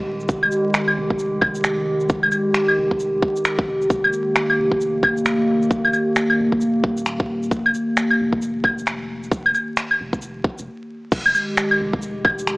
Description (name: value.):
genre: future garage.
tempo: 133 BPM.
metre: 4/4.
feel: swing 61% on 16ths.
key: F minor.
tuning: A4 = 435 Hz.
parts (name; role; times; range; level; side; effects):
warbly tape-like pad; sustained chords; 0.0-12.6 s; Eb3 to G4; -21 LUFS; equal; chorus, built-in reverb, sidechain pumping.
soft dub sub bass; bass; 0.0-12.6 s; Eb1 to F1; -35 LUFS; equal; sidechain pumping.
organic electronic drum kit; drums; 0.2-12.6 s; claves, crash cymbal, finger snaps, shaker; -19 LUFS; equal; none.
electronic kick drum; drums; 0.3-12.4 s; none; -22 LUFS; equal; none.
room: wet lush hall reverb, RT60 2.1 s.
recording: vinyl crackle, small speaker sound.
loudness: -17 LUFS.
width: side -23 dB against mid.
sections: 0.0-11.1 A section; 11.1-12.6 B section.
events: stop 10.7-11.1.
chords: 0.0 Fm9; 3.9 Eb; 11.1 Fm9.